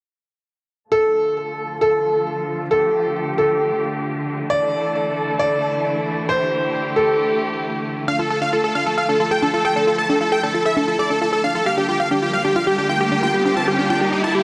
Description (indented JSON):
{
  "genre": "trance",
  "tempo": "134 BPM",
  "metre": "4/4",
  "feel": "straight",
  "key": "D minor",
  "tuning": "A4 = 437 Hz",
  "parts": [
    { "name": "clear baby grand piano", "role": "second line", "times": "0.9-7.4 s", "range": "A4 to D5", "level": "-22 LUFS", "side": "equal", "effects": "delay" },
    { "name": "muted studio string section", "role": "sustained chords", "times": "0.9-14.4 s", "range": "D3 to A4", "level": "-26 LUFS", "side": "equal", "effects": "vintage 12-bit sampler grit, low-pass filter" },
    { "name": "dense compressed supersaw", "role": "melody", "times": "8.1-14.4 s", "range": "G4 to A5", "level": "-21 LUFS", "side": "equal", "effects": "cassette tape, digital delay" },
    { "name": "unison pluck", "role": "arpeggios", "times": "8.1-14.4 s", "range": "D4 to A4", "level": "-25 LUFS", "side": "equal", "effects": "dub echo" },
    { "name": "riser", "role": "sound effects", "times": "12.3-14.4 s", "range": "none", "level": "-28 LUFS", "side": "equal", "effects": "none" }
  ],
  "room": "moderate huge ambient reverb, RT60 4.5 s",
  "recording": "none",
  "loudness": "-20 LUFS",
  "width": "mono",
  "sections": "0.9-14.4 A section",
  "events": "filter sweep on string section 0.9-14.4; riser 12.3-14.4",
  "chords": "0.9 Dm; 4.5 Asus4; 8.1 Dm; 11.7 Gm7"
}